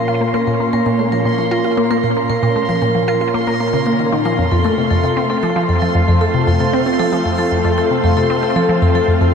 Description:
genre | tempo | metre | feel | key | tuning
ambient, sequencer-driven space music | 115 BPM | 4/4 | straight | Bb harmonic minor | A4 = 439 Hz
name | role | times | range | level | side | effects
lush unison pad | sustained chords | 0.0-9.3 s | Bb2 to F4 | -19 LUFS | left 1 dB | chorus
vibraphone with medium hard mallets | arpeggios | 0.0-9.3 s | A4 to Bb4 | -20 LUFS | moving between left 5 dB and right 8 dB | auto-pan, tape echo
resonant blip pluck | riff | 0.0-9.3 s | F2 to F4 | -16 LUFS | equal | phaser, cassette tape, tape echo
bubbling stepped-filter texture | texture | 0.0-9.3 s | C6 | -25 LUFS | right 1 dB | chorus, built-in reverb
room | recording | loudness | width
moderate shimmer reverb, RT60 6.1 s | none | -13 LUFS | side -6 dB against mid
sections
0.0-9.3 A section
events
none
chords
0.0 Bbmadd9; 4.4 F

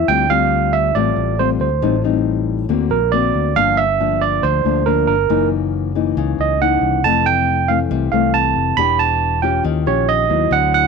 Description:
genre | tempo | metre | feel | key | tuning
bossa nova | 138 BPM | 4/4 | straight | D minor | A4 = 440 Hz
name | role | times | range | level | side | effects
barky tine electric piano | melody | 0.0-10.9 s | A#4 to B5 | -16 LUFS | right 11 dB | none
nylon-string guitar | accompaniment | 0.0-10.9 s | F2 to G4 | -19 LUFS | left 14 dB | none
fingered electric bass | bass | 0.0-10.9 s | E1 to Eb2 | -21 LUFS | left 1 dB | none
room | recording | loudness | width
light reverb | 1960s-style stereo with parts hard left and right | -14 LUFS | side -5 dB against mid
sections
0.1-10.9 A section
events
none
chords
0.1 Dm7; 1.8 Am7b5; 2.7 Daug7; 3.6 Gm7; 5.3 F#6; 7.0 Fmaj7; 8.8 Em7; 9.6 Eb9

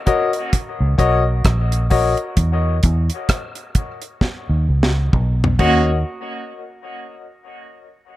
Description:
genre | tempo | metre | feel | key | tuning
dub reggae | 65 BPM | 4/4 | swing 58% on 16ths | Eb phrygian | A4 = 437 Hz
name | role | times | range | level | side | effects
warm upright piano | stabs | 0.1-6.0 s | Gb4 to Eb5 | -22 LUFS | left 5 dB | dub echo
deep reggae drum kit | drums | 0.1-5.8 s | crash cymbal, hi-hat, kick drum, rim click, snare drum, toms | -18 LUFS | equal | none
vintage muted fingered electric bass | bass | 0.8-6.0 s | Bb1 to E2 | -17 LUFS | equal | none
clean electric guitar | accompaniment | 5.6-5.9 s | Bb3 to Gb4 | -24 LUFS | right 3 dB | tremolo, dub echo
room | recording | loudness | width
light reverb, small room ambience | none | -16 LUFS | side -15 dB against mid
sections
0.0-6.1 A section; 6.1-8.2 B section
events
break 0.0-6.1; drum fill 4.2-6.1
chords
0.0 Ebm7; 2.4 E5; 5.6 Ebm7; 6.1 N.C.

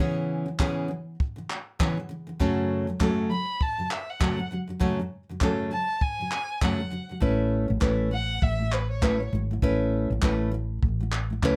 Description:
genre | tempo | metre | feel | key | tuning
acoustic pop | 100 BPM | 4/4 | swing 60% on 16ths | A major | A4 = 440 Hz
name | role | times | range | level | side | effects
nylon-string guitar | accompaniment | 0.0-11.6 s | F#2 to B4 | -29 LUFS | equal | none
compact cocktail drum kit | drums | 0.6-11.6 s | handclaps, kick drum | -30 LUFS | equal | none
dark violin | melody | 3.3-9.3 s | B4 to B5 | -33 LUFS | equal | none
woody fretless electric bass | bass | 7.2-11.6 s | G#1 to C#2 | -30 LUFS | equal | none
room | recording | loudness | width
light reverb | close, detailed microphones | -27 LUFS | mono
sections
0.0-11.6 A section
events
none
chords
0.0 C#m7; 2.4 F#m; 7.2 Aadd9

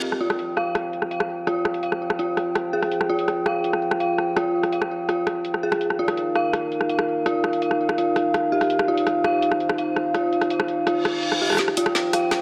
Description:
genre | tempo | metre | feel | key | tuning
half-time drum and bass | 166 BPM | 4/4 | half-time | unclear | A4 = 438 Hz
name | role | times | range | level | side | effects
dark analog pad | sustained chords | 0.0-12.4 s | Eb4 to G5 | -28 LUFS | equal | chorus
dark detuned synth bell | arpeggios | 0.0-12.4 s | F4 to F5 | -26 LUFS | equal | chorus, low-pass filter, delay
drum and bass drum kit | drums | 0.0-12.4 s | hi-hat, rim click, snare drum | -29 LUFS | equal | overdrive, low-pass filter on hats, low-pass filter on snare
reverse cymbal | sound effects | 0.0, 11.0-11.6 s | none | -30 LUFS | equal | none
room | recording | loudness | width
wet echo chamber reverb, RT60 1.4 s | none | -23 LUFS | mono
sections
0.0-11.6 A section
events
reverse cymbal 11.0-11.6; drum fill 11.6-12.4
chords
0.0 Fm; 5.8 Eb; 11.6 F5

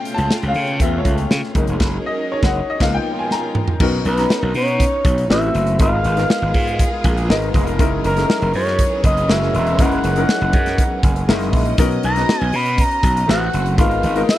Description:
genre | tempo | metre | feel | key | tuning
polished 1980s jazz-funk pop | 120 BPM | 4/4 | straight | unclear | A4 = 441 Hz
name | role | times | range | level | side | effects
warm concert grand piano | accompaniment | 0.0-14.4 s | E#3 to A#5 | -22 LUFS | left 3 dB | lush chorus
clear studio string section | sustained chords | 0.0-14.4 s | B2 to D#5 | -27 LUFS | right 2 dB | none
modern studio drum kit | drums | 0.1-14.4 s | crash cymbal, hi-hat, kick drum, snare drum, toms | -18 LUFS | equal | none
gritty slap bass | bass | 0.2-14.2 s | E1 to C#3 | -20 LUFS | equal | overdrive
expressive synth lead | melody | 4.1-14.4 s | A#4 to B5 | -20 LUFS | equal | chorus, slapback echo
room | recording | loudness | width
little or no reverb | dry, close 1970s-style studio recording | -15 LUFS | side -14 dB against mid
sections
0.0-3.8 A section; 3.8-14.4 B section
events
grand piano solo 0.0-3.8; band accent 1.8-3.8; drum fill 3.3-3.8; grand piano fill 6.8-7.8, 10.8-11.8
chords
0.0 C#7alt; 1.6 F#69; 2.8 C#13; 3.8 Bmaj9; 5.3 Am69; 5.8 G#m69; 7.8 F#13; 11.8 Bmaj9; 13.3 Am69; 13.8 G#m69

